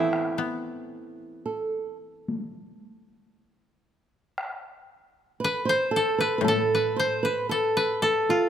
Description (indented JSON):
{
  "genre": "japanese traditional, Japanese chamber music",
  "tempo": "57 BPM",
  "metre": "4/4",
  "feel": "rubato",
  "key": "E miyako bushi",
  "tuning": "A4 = 440 Hz",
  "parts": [
    { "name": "koto", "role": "melody", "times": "0.0-8.5 s", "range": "E3 to C5", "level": "-25 LUFS", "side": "left 2 dB", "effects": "none" },
    { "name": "flamenco guitar", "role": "second line", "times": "0.0-8.5 s", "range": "E4 to C5", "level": "-27 LUFS", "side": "right 4 dB", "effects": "none" },
    { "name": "koto", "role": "accompaniment", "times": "0.0-8.5 s", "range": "A2 to B3", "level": "-33 LUFS", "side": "left 6 dB", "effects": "none" },
    { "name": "solo taiko drums", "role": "percussion", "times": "0.1-6.7 s", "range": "none", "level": "-34 LUFS", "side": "left 2 dB", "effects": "none" }
  ],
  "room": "light reverb",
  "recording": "close, detailed microphones",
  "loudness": "-23 LUFS",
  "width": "side -9 dB against mid",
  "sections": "0.0-8.5 A section",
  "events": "none",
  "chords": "none"
}